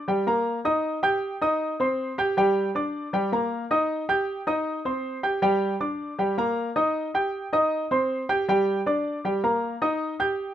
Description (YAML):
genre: latin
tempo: 157 BPM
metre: 4/4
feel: straight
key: G minor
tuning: A4 = 440 Hz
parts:
  - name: clear concert grand piano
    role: solo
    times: 0.1-10.5 s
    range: G3 to G6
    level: -23 LUFS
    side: equal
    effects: none
room: light reverb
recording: rough home demo mix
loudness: -23 LUFS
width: side -11 dB against mid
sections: 0.0-10.5 A section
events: none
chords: 0.0 Gm; 0.8 Cm; 2.4 Gm; 3.9 Cm; 5.4 Gm; 6.9 Cm; 8.5 Gm; 10.0 Cm (rootless)